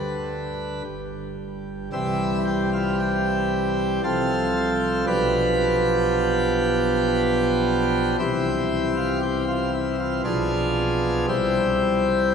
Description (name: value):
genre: classical, chorale-style piece for pipe organ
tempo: 58 BPM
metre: 3/4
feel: straight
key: C major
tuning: A4 = 440 Hz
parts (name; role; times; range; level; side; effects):
- pipe organ, plenum; solo; 0.0-12.3 s; G1 to B4; -20 LUFS; equal; none
room: wet church reverb, RT60 3.5 s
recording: minimal, uncompressed stereo recording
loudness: -20 LUFS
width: side -6 dB against mid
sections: 0.0-1.9 A section; 1.9-12.3 B section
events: none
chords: 0.0 G; 1.9 C; 4.0 F/C; 5.1 G7/B; 8.2 C; 10.3 Bdim7; 11.3 C